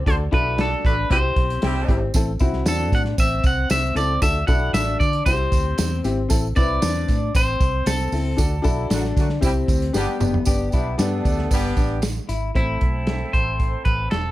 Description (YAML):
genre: uptempo 1960s-style soul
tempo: 115 BPM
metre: 4/4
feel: straight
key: A dorian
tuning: A4 = 440 Hz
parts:
  - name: electric guitar through a small old amp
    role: riff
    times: 0.0-12.5 s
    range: B3 to G4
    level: -28 LUFS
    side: left 4 dB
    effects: none
  - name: electric guitar at the edge of break-up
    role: melody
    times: 0.1-14.3 s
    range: E4 to F#5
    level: -24 LUFS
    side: equal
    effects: none
  - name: clear upright piano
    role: accompaniment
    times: 0.1-13.1 s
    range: A3 to D5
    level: -27 LUFS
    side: left 3 dB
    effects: none
  - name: vintage muted fingered electric bass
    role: bass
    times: 0.1-14.3 s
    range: E1 to D3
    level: -24 LUFS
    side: equal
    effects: none
  - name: warm soul drum kit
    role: drums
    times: 0.1-14.2 s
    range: hi-hat, kick drum, snare drum, toms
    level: -22 LUFS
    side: equal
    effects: none
  - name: warm horn section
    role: second line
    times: 0.6-2.0, 8.9-14.3 s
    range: F#3 to A4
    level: -30 LUFS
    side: right 2 dB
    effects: none
  - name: tambourine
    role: percussion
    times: 2.1-12.4 s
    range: none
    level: -35 LUFS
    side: right 6 dB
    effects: none
room: studio reverb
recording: none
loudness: -18 LUFS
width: side -15 dB against mid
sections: 0.0-10.5 A section; 10.5-12.6 B section; 12.6-14.3 C section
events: band accent 0.1-2.1, 8.4-10.5; drum fill 9.9-10.5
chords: 0.1 D; 1.1 C; 2.1 Am; 4.2 D; 5.3 C; 6.3 Am; 8.4 D; 9.4 C; 9.9 G; 12.6 Am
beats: | 0.06 0.58 1.10 1.62 | 2.15 2.67 3.19 3.71 | 4.23 4.75 5.27 5.79 | 6.31 6.83 7.35 7.87 | 8.39 8.91 9.43 9.95 | 10.47 10.99 11.51 12.03 | 12.55 13.07 13.60 14.12